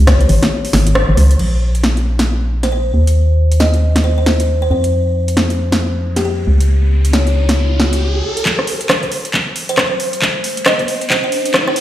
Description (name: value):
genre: UK garage, two-step garage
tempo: 136 BPM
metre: 4/4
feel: swing 61% on 16ths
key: unclear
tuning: A4 = 440 Hz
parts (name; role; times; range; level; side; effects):
- organ-like FM bass; bass; 0.0-8.2 s; Ab1 to F2; -13 LUFS; equal; none
- buzzing kalimba; melody; 0.1-11.8 s; G4 to Eb5; -21 LUFS; equal; tape echo
- electronic kick drum; drums; 0.1-0.2, 8.5-11.7 s; none; -19 LUFS; equal; overdrive, high-pass filter on kick
- garage drum kit; drums; 0.1-11.8 s; crash cymbal, handclaps, hi-hat, rim click, snare drum; -16 LUFS; equal; overdrive
- riser; sound effects; 6.0-11.8 s; none; -24 LUFS; equal; none
room: light reverb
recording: played on a big sound system in a bare room, large studio reverb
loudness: -12 LUFS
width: side -13 dB against mid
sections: 0.0-1.4 A section; 1.4-8.5 B section; 8.5-11.8 C section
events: break 0.5-1.4; band accent 1.0; riser 6.0-8.5, 8.5-11.8; build-up 8.5-11.8; drum fill 8.5-11.8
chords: 0.0 Db5; 1.4 N.C.